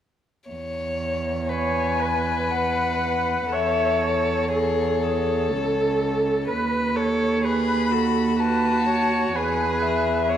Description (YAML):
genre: classical, slow romantic movement for string quartet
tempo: 61 BPM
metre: 3/4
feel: uneven beats, rubato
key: E major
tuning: A4 = 441 Hz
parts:
  - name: muted violin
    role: second line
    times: 0.5-10.4 s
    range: F#4 to C#5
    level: -27 LUFS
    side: left 2 dB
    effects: none
  - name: muted cello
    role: bass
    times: 0.5-10.4 s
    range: C#2 to E2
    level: -26 LUFS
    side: right 4 dB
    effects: none
  - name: muted violin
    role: melody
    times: 1.5-10.4 s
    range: C#5 to B5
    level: -26 LUFS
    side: left 6 dB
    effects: none
  - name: muted viola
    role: accompaniment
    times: 1.5-10.4 s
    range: G#4 to C#5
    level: -26 LUFS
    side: right 2 dB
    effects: none
room: wet recital hall reverb, RT60 1.9 s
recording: none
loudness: -20 LUFS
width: side -10 dB against mid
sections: 0.5-10.4 A section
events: none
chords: 0.5 E; 3.5 A/E; 6.5 B7/D#; 9.3 E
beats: | 0.50 1.51 2.51 | 3.52 4.52 5.50 | 6.47 7.44 8.39 | 9.35 10.28